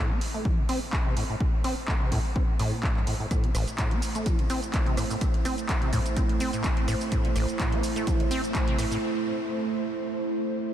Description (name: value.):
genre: acid house.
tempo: 126 BPM.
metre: 4/4.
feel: swing 54% on 16ths.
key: A minor.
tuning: A4 = 440 Hz.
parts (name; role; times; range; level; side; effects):
acid bass, saw; riff; 0.0-9.0 s; A1 to C4; -31 LUFS; equal; wide subtle chorus, sidechain pumping, diffuse ambient delay.
punchy analog drum machine; drums; 0.2-9.0 s; handclaps, hi-hat, rim click, shaker; -34 LUFS; equal; none.
electronic kick drum; drums; 0.5-8.7 s; none; -26 LUFS; equal; none.
warbly tape-like pad; sustained chords; 3.7-10.7 s; A3 to C5; -30 LUFS; right 3 dB; chorus, built-in reverb, sidechain pumping.
room: light reverb.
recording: none.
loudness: -24 LUFS.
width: side -10 dB against mid.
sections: 0.0-10.7 A section.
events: filter sweep on acid bass 0.0-10.7; break 9.0-10.7.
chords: 0.0 Am.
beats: 0.45 0.93 | 1.41 1.88 2.36 2.83 | 3.31 3.79 4.26 4.74 | 5.21 5.69 6.17 6.64 | 7.12 7.59 8.07 8.55 | 9.02 9.50 9.98 10.45.